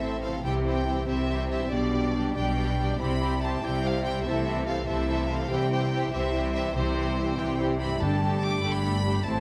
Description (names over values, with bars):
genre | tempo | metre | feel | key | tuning
cinematic, heroic adventure film score | 95 BPM (dotted quarters) | 12/8 | straight | unclear | A4 = 440 Hz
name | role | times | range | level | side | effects
rich chamber violin section | melody | 0.0-9.4 s | C5 to D6 | -36 LUFS | equal | none
warm studio violin section | second line | 0.0-9.4 s | E4 to D5 | -36 LUFS | equal | none
warm symphonic viola section | accompaniment | 0.0-9.4 s | E3 to E4 | -38 LUFS | equal | none
dark French horn section | sustained chords | 0.0-9.4 s | E3 to E4 | -36 LUFS | equal | none
concert harp | arpeggios | 0.0-9.4 s | G2 to A4 | -40 LUFS | equal | none
rich symphonic cello section | bass | 0.0-9.4 s | G2 to C3 | -33 LUFS | equal | none
rich symphonic double bass section | bass | 0.0-9.4 s | G1 to C2 | -34 LUFS | equal | none
timpani | percussion | 8.0-8.6 s | G2 | -34 LUFS | equal | none
room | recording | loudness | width
moderate scoring stage reverb, RT60 2.0 s | none | -27 LUFS | mono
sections
0.0-9.4 A section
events
none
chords
0.4 C; 1.7 G/B; 3.0 C; 4.2 Am/C; 5.5 C; 8.0 Gsus2